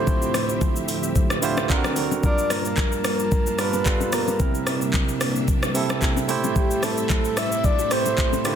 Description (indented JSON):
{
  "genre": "amapiano",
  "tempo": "111 BPM",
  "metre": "4/4",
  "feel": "swing 55% on 16ths",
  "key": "unclear",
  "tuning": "A4 = 440 Hz",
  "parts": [
    { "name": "breathy flute-like synth lead", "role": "melody", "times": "0.0-8.6 s", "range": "G4 to E5", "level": "-26 LUFS", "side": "left 1 dB", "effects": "chorus, ping-pong delay" },
    { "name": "barky tine electric piano", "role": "accompaniment", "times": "0.0-8.6 s", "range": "C3 to Bb5", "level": "-26 LUFS", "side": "right 6 dB", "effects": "medium stereo tremolo" },
    { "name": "string machine, cellos", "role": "sustained chords", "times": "0.0-8.6 s", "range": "D2 to A5", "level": "-29 LUFS", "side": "left 1 dB", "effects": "ensemble chorus, sidechain pumping" },
    { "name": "afro-pop drum kit", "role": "drums", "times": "0.1-8.6 s", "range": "handclaps, hi-hat, kick drum, rim click, shaker", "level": "-23 LUFS", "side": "equal", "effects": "none" },
    { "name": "congas and bongos", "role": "percussion", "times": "0.1-8.6 s", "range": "none", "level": "-32 LUFS", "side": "left 9 dB", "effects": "none" }
  ],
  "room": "light reverb",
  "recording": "dense, heavily limited modern master",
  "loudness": "-20 LUFS",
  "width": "side -8 dB against mid",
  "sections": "0.0-8.6 A section",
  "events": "tine electric piano fill 1.2-2.2",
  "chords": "0.0 Dm11; 1.7 D7b13; 2.2 Gm7; 3.9 G9; 4.4 C7; 6.3 Am7",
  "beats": "| 0.07 0.61 1.15 1.69 | 2.23 2.78 3.32 3.86 | 4.40 4.94 5.48 6.02 | 6.56 7.10 7.64 8.18"
}